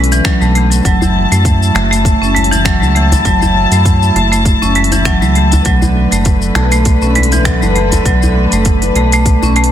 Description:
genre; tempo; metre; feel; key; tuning
organic downtempo; 100 BPM; 4/4; swing 56% on 16ths; F# minor; A4 = 442 Hz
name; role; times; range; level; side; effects
warm studio string section; sustained chords; 0.0-9.7 s; D3 to A5; -17 LUFS; left 2 dB; sidechain pumping
marimba with hard mallets; arpeggios; 0.0-9.7 s; E3 to C#4; -14 LUFS; right 1 dB; ping-pong delay
round analog bass; bass; 0.0-9.7 s; F#1 to F#2; -13 LUFS; equal; none
organic electronic drum kit; drums; 0.0-9.7 s; finger snaps, hi-hat, shaker; -19 LUFS; equal; soft clipping on snare
electronic kick drum; drums; 0.2-9.4 s; none; -13 LUFS; equal; none
djembe; percussion; 1.0-9.7 s; none; -20 LUFS; left 1 dB; none
room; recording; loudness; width
light reverb, small room ambience; dense, heavily limited modern master; -9 LUFS; side -10 dB against mid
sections
0.0-9.7 A section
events
none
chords
0.0 Bm7; 0.9 F#m7; 5.7 Bm7

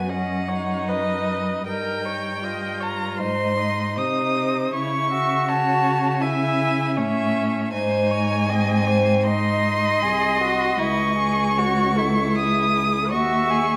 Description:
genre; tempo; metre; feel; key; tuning
classical, slow romantic movement for string quartet; 78 BPM; 4/4; rubato; C# minor; A4 = 440 Hz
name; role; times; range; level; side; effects
muted violin; melody; 0.0-13.8 s; D#5 to D#6; -27 LUFS; equal; none
muted violin; second line; 0.0-13.8 s; B3 to G#4; -29 LUFS; equal; none
muted viola; accompaniment; 0.0-13.8 s; F#4 to E5; -29 LUFS; equal; none
muted cello; bass; 0.0-13.8 s; B#1 to C#3; -27 LUFS; equal; none
room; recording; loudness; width
moderate recital hall reverb, RT60 1.3 s; none; -22 LUFS; mono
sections
0.0-13.8 A section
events
none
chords
0.0 D#m/F#; 1.7 D#/G; 3.2 G#; 4.7 C#m; 7.7 G#; 10.8 C#m

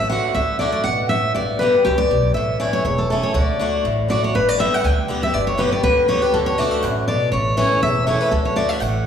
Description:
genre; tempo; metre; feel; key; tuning
bluegrass; 241 BPM; 4/4; swing 54% on 8ths; D major; A4 = 438 Hz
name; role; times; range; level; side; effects
picked steel-string acoustic guitar; melody; 0.0-9.1 s; G4 to G5; -19 LUFS; equal; none
picked swing-style acoustic guitar; accompaniment; 0.0-9.1 s; E2 to G4; -22 LUFS; left 2 dB; none
upright bass; bass; 0.0-9.1 s; E1 to D2; -24 LUFS; right 1 dB; none
room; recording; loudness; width
wet recital hall reverb, RT60 1.8 s; recorded in a church or concert hall, small room reverb; -16 LUFS; side -8 dB against mid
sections
0.0-4.3 A section; 4.3-9.1 B section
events
none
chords
0.0 D; 1.4 G; 2.4 A; 3.3 D; 4.3 G; 6.3 D; 7.3 A; 8.3 D

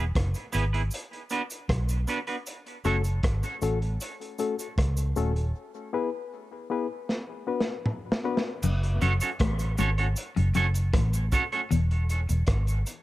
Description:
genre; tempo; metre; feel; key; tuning
dub reggae; 78 BPM; 4/4; straight; F# minor; A4 = 435 Hz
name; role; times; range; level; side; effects
clean electric guitar; accompaniment; 0.0-3.0, 9.0-11.6 s; B3 to C#5; -31 LUFS; right 4 dB; dub echo
vintage muted fingered electric bass; bass; 0.0-12.8 s; D#1 to C#2; -25 LUFS; equal; none
crunchy breakbeat drum kit; drums; 0.2-13.0 s; crash cymbal, hi-hat, kick drum, rim click, snare drum, toms; -30 LUFS; equal; none
cabasa; percussion; 0.3-13.0 s; none; -40 LUFS; right 3 dB; none
barky reed electric piano; stabs; 2.8-8.5 s; A3 to B4; -32 LUFS; left 6 dB; overdrive, dub echo
electric guitar at the edge of break-up; riff; 8.6-11.9 s; E2 to A2; -32 LUFS; left 4 dB; dub echo
room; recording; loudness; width
light reverb, small room ambience; none; -25 LUFS; side -16 dB against mid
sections
0.0-8.6 A section; 8.6-13.0 B section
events
break 0.0-2.5, 5.5-8.6; drum fill 7.1-8.6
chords
0.0 E; 0.9 Bm; 2.5 F#m; 5.5 E; 7.1 Bm; 8.6 F#m; 11.7 E

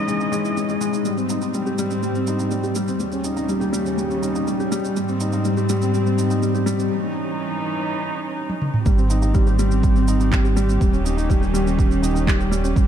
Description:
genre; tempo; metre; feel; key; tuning
piano and strings electronica; 123 BPM; 4/4; straight; Ab major; A4 = 435 Hz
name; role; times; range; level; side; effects
dark studio string section; sustained chords; 0.0-12.9 s; Eb2 to Eb5; -26 LUFS; right 3 dB; sidechain pumping
felt-muted upright piano; riff; 0.0-12.9 s; G3 to Ab4; -22 LUFS; left 2 dB; ping-pong delay
minimal click drum kit; drums; 0.1-12.9 s; handclaps, shaker, toms; -30 LUFS; right 2 dB; none
round analog bass; bass; 8.9-12.9 s; Eb1 to Ab1; -21 LUFS; right 1 dB; sidechain pumping
electronic kick drum; drums; 8.9-12.9 s; none; -18 LUFS; right 1 dB; overdrive
room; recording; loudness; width
moderate huge ambient reverb, RT60 4.6 s; dark, warm production; -18 LUFS; side -9 dB against mid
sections
0.0-8.9 A section; 8.9-12.9 B section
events
build-up 0.0-8.9; break 6.9-8.9; drum fill 8.5-8.9; drop 8.9-12.9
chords
0.0 Dbmadd9; 1.1 Abmaj7; 3.0 Eb7; 5.0 Abmaj7; 6.9 Dbmadd9; 8.9 Abmaj7; 10.8 Eb7

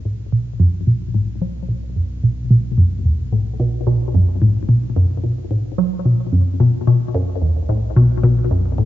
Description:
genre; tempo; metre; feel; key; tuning
ambient, sequencer-driven space music; 110 BPM; 4/4; straight; unclear; A4 = 440 Hz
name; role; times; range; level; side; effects
fat analog bass; bass; 0.0-8.9 s; B1; -28 LUFS; equal; none
resonant blip pluck; riff; 0.1-8.9 s; E2 to F#3; -15 LUFS; equal; phaser, ping-pong delay
room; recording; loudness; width
moderate concert hall reverb, RT60 2.4 s; nothing above 7.6 kHz; -15 LUFS; side -14 dB against mid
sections
0.0-8.9 A section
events
fade-in on analog synth bass 0.0-8.9; filter sweep on synth arpeggio sound 0.0-8.9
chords
0.0 B5

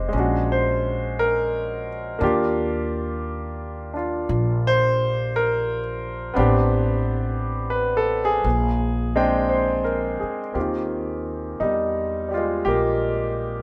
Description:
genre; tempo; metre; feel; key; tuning
jazz ballad; 58 BPM; 4/4; swing 68% on 8ths; Eb major from 10.6 s; A4 = 440 Hz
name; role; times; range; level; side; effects
clear concert grand piano; accompaniment; 0.0-13.6 s; Eb3 to G5; -24 LUFS; equal; none
upright bass; bass; 0.0-13.6 s; A1 to Fb2; -28 LUFS; equal; none
room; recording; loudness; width
light reverb; none; -23 LUFS; mono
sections
0.0-10.6 A section; 10.6-13.6 B section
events
none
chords
0.1 Bb7alt; 2.2 Ebmaj9; 6.4 Am11; 8.5 Bb13; 10.6 Eb69

